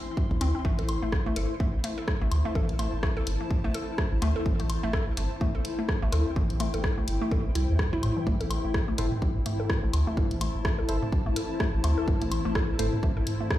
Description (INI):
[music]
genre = minimal techno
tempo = 126 BPM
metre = 4/4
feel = swing 58% on 16ths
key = A minor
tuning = A4 = 440 Hz
[part]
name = granular cloud pad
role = texture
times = 0.0-13.6 s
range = E4 to C6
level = -34 LUFS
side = left 2 dB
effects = built-in reverb, sidechain pumping
[part]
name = hollow square pluck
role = riff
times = 0.2-13.4 s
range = E3 to A4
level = -35 LUFS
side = left 1 dB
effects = chorus, sidechain pumping, digital delay
[part]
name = electronic kick drum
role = drums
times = 0.2-13.6 s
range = none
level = -27 LUFS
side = equal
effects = none
[part]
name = saturated sub bass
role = bass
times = 0.3-12.9 s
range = G1 to A2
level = -28 LUFS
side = equal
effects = sidechain pumping
[part]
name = house drum kit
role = drums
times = 0.4-13.6 s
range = hi-hat, rim click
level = -34 LUFS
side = left 1 dB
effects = none
[part]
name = electronic woodblock and toms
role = percussion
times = 0.4-13.4 s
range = none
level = -35 LUFS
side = equal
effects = digital delay
[part]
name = percussive organ stab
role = stabs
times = 9.0-12.9 s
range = E4 to C5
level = -36 LUFS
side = right 2 dB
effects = chorus, phaser, digital delay
[sound]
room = moderate studio reverb, RT60 0.6 s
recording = played on a big sound system in a bare room, large studio reverb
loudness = -25 LUFS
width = side -14 dB against mid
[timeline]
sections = 0.0-13.6 A section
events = none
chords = 0.0 Am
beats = 0.17 | 0.65 1.12 1.60 2.08 | 2.55 3.03 3.51 3.98 | 4.46 4.93 5.41 5.89 | 6.36 6.84 7.32 7.79 | 8.27 8.74 9.22 9.70 | 10.17 10.65 11.12 11.60 | 12.08 12.55 13.03 13.51